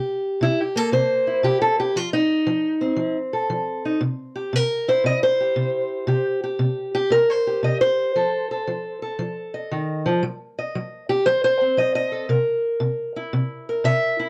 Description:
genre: acoustic country blues, solo or duo.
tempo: 116 BPM.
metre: 4/4.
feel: swing 67% on 8ths.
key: C mixolydian.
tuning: A4 = 440 Hz.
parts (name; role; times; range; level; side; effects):
fingerpicked steel-string acoustic guitar; solo; 0.0-14.3 s; C3 to E5; -22 LUFS; equal; none.
room: light reverb.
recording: dry, gritty hardware recording, cassette tape.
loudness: -22 LUFS.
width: mono.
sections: 0.0-14.3 A section.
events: steel-string acoustic guitar solo 0.0-14.3.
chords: 0.0 C7; 2.0 F7; 4.0 C; 8.1 F7; 10.2 F#dim7(no3); 12.3 C7.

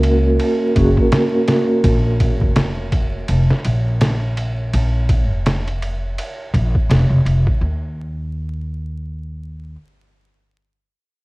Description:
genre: trip hop.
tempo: 83 BPM.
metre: 4/4.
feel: swing 59% on 16ths.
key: unclear.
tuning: A4 = 437 Hz.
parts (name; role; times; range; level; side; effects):
vibraphone with soft mallets; accompaniment; 0.0-1.8 s; Bb3 to Bb4; -18 LUFS; right 1 dB; tremolo, tape echo.
upright bass; bass; 0.0-9.7 s; F1 to Eb2; -18 LUFS; equal; none.
trip hop sampler-style drum kit; drums; 0.0-7.6 s; kick drum, ride cymbal, snare drum; -19 LUFS; equal; none.
room: little or no reverb.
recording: worn, warbling old tape, cassette tape, vinyl crackle, warbly pitch drift, faint mains hum.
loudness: -15 LUFS.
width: side -23 dB against mid.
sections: 0.0-7.6 A section; 7.6-10.5 B section.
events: none.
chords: 0.0 Gb; 1.8 Bb5; 7.6 N.C..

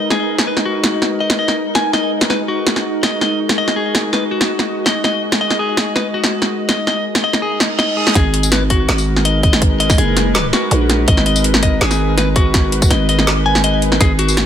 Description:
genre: half-time drum and bass.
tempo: 164 BPM.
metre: 4/4.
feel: half-time.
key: G# minor.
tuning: A4 = 442 Hz.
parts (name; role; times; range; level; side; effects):
bowed-like drone; sustained chords; 0.0-14.5 s; G#3 to D#5; -22 LUFS; left 1 dB; built-in reverb, sidechain pumping.
clean electric guitar; arpeggios; 0.0-14.5 s; F#4 to G#5; -19 LUFS; left 2 dB; ping-pong delay.
pulsing gated texture; texture; 0.0-8.2 s; D#4 to D#5; -27 LUFS; right 3 dB; chorus, built-in reverb.
drum and bass drum kit; drums; 0.1-14.4 s; hi-hat, snare drum, tambourine; -17 LUFS; equal; none.
reverse cymbal; sound effects; 7.6-8.2 s; none; -23 LUFS; right 8 dB; none.
growling 808-style bass; bass; 8.2-14.5 s; F#1 to A#1; -16 LUFS; equal; none.
electronic kick drum; drums; 8.2-14.1 s; none; -14 LUFS; equal; none.
room: light reverb, digital ambience.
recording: none.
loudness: -13 LUFS.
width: side -9 dB against mid.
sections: 0.0-8.2 A section; 8.2-14.5 B section.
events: filter sweep on synth drone 0.0-8.2; reverse cymbal 7.6-8.2; drop 8.2-14.5.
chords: 0.0 G#madd9.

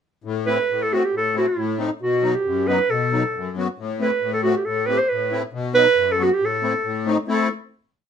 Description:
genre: klezmer.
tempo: 137 BPM.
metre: 2/4.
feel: straight.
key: A dorian sharp4.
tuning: A4 = 439 Hz.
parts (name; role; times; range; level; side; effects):
musette accordion; accompaniment; 0.2-7.5 s; F#2 to G4; -24 LUFS; left 4 dB; none.
clear clarinet; melody; 0.5-7.5 s; E4 to C5; -19 LUFS; right 2 dB; none.
room: moderate studio ambience, RT60 0.5 s.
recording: minimal, uncompressed stereo recording.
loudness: -19 LUFS.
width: side -7 dB against mid.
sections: 0.2-7.3 A section; 7.3-8.1 final chord.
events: none.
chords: 0.2 Am; 2.0 B; 3.8 Am; 5.5 B; 6.4 Am.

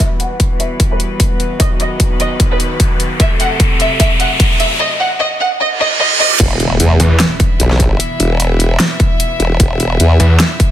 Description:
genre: heavy wobble dubstep.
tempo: 150 BPM.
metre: 4/4.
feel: swing 55% on 16ths, half-time.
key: E harmonic minor.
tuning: A4 = 439 Hz.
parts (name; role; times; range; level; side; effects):
warm studio violin section; melody; 0.0-6.3 s; B4 to F#5; -17 LUFS; right 1 dB; vintage 12-bit sampler grit, low-pass filter, dub echo.
bright chamber string section; sustained chords; 0.0-10.7 s; B2 to E5; -22 LUFS; left 1 dB; sidechain pumping, low-pass filter.
dubstep drum kit; drums; 0.0-10.7 s; crash cymbal, hi-hat, snare drum; -17 LUFS; equal; none.
electronic kick drum; drums; 0.0-10.7 s; none; -14 LUFS; equal; overdrive.
riser, reverse cymbal and impact; sound effects; 0.0-8.0 s; none; -18 LUFS; right 1 dB; none.
formant-sweep wobble bass; bass; 6.4-10.2 s; E1 to E2; -12 LUFS; equal; chorus, overdrive.
snarling distorted saw bass; bass; 7.0-7.2, 10.2-10.4 s; E2; -10 LUFS; equal; distortion, overdrive.
room: light reverb, digital ambience.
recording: none.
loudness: -10 LUFS.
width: side -12 dB against mid.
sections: 0.0-6.4 A section; 6.4-10.7 B section.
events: build-up 0.0-6.4; riser 0.0-4.8; filter sweep on violin section 0.0-6.4; drum fill 3.2-4.8; reverse cymbal 5.7-6.4; drop 6.4-10.7; impact 6.4-8.0.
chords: 0.0 Emadd9; 1.6 B; 3.2 F#dim; 4.8 N.C.; 6.4 E5.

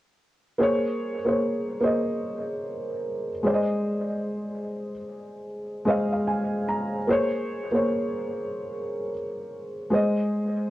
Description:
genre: hip hop.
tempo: 74 BPM.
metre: 4/4.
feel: swing 62% on 16ths.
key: Bb minor.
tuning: A4 = 439 Hz.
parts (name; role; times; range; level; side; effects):
felt-muted upright piano; solo; 0.6-10.7 s; Ab3 to Bb5; -24 LUFS; equal; cassette tape, low-pass filter, tape echo.
room: moderate studio reverb, RT60 0.5 s.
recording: cassette tape.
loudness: -24 LUFS.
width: side -15 dB against mid.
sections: 0.6-7.1 A section; 7.1-10.7 B section.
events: felt piano fill 5.5-7.1.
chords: 0.6 Bbm9; 3.4 Fm7/Ab; 7.1 Bbm9; 9.9 Fm7/Ab (rootless).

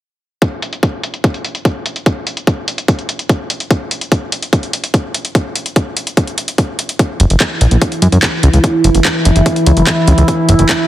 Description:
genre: psychedelic trance.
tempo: 146 BPM.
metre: 4/4.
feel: straight.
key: unclear.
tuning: A4 = 439 Hz.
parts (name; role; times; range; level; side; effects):
drum and bass drum kit; drums; 0.4-10.8 s; handclaps, hi-hat; -18 LUFS; equal; low-pass filter on hats, low-pass filter on snare, low-pass filter on room.
electronic kick drum; drums; 0.4-10.8 s; none; -16 LUFS; equal; high-pass filter on kick, high-pass filter on room.
overtone-sweeping drone; sustained chords; 7.4-10.9 s; E3 to E4; -14 LUFS; right 1 dB; chorus, built-in reverb, sidechain pumping.
fat analog bass; bass; 7.2-10.6 s; F#1 to F#2; -9 LUFS; equal; tube saturation.
room: light reverb.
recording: heavily compressed radio sound, multiband compression.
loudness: -12 LUFS.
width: side -13 dB against mid.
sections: 0.4-10.9 A section.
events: none.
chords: none.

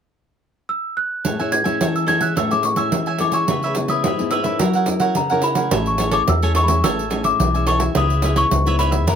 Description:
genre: samba and choro.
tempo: 107 BPM.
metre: 4/4.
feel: straight.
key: A major.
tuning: A4 = 440 Hz.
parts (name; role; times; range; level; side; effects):
celesta; melody; 0.7-9.2 s; A#5 to G#6; -21 LUFS; left 2 dB; none.
cavaquinho; accompaniment; 1.2-9.2 s; E4 to G#5; -25 LUFS; right 4 dB; none.
nylon-string guitar; accompaniment; 1.2-9.2 s; F#2 to Bb4; -23 LUFS; left 2 dB; none.
pandeiro; percussion; 1.2-9.2 s; none; -23 LUFS; right 4 dB; none.
hollow-body short-scale fingered electric bass; bass; 5.7-9.2 s; A1 to F#2; -20 LUFS; equal; none.
room: light reverb.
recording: close, detailed microphones.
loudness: -16 LUFS.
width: side -8 dB against mid.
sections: 0.0-1.2 A section; 1.2-5.7 B section; 5.7-9.2 C section.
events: none.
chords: 0.0 N.C.; 1.2 Amaj7; 3.5 C#m7; 4.6 F#7; 5.7 Amaj7; 8.0 C#m7.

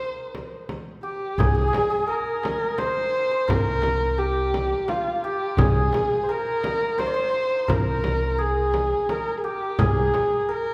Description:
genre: Persian modal ensemble.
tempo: 86 BPM.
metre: 3/4.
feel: straight.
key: C dastgah shur.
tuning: A4 = 438 Hz.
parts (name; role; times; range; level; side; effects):
dark kamancheh; melody; 0.0-10.7 s; F4 to C5; -26 LUFS; equal; none.
santur; second line; 0.0-10.7 s; F4 to Db5+45c; -33 LUFS; equal; none.
frame drum; percussion; 0.3-10.3 s; none; -33 LUFS; equal; none.
upright bass; bass; 1.4-10.1 s; C2; -28 LUFS; equal; none.
tombak; percussion; 1.4-10.3 s; none; -30 LUFS; equal; none.
room: wet recital hall reverb, RT60 1.6 s.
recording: recorded in a church or concert hall.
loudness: -23 LUFS.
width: mono.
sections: 0.0-1.4 A section; 1.4-10.7 B section.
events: none.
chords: none.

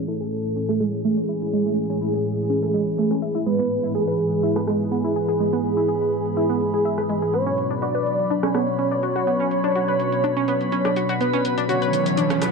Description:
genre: progressive house.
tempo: 124 BPM.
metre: 4/4.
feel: straight.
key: B dorian.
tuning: A4 = 440 Hz.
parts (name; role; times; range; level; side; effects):
wide unison lead; melody; 0.0-12.5 s; G#4 to D5; -23 LUFS; right 1 dB; digital delay.
lush unison pad; sustained chords; 0.0-12.5 s; G#2 to G#5; -26 LUFS; left 1 dB; chorus.
analog pluck; arpeggios; 0.0-12.5 s; G#3 to E5; -25 LUFS; right 1 dB; chorus, ping-pong delay.
drifting glass-harmonics texture; texture; 2.0-12.5 s; B5; -36 LUFS; right 2 dB; chorus, built-in reverb.
pop drum kit; drums; 0.1-12.5 s; hi-hat, rim click, shaker; -30 LUFS; right 1 dB; overdrive.
riser; sound effects; 11.5-12.5 s; none; -26 LUFS; right 4 dB; none.
room: light reverb.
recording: low-pass filter.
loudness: -20 LUFS.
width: side -4 dB against mid.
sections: 0.0-12.5 A section.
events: filter sweep on synth pluck 0.0-12.5; filter sweep 0.0-12.5; riser 11.5-12.5.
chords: 0.0 Amaj7; 3.5 E/G#; 7.3 Bmadd9.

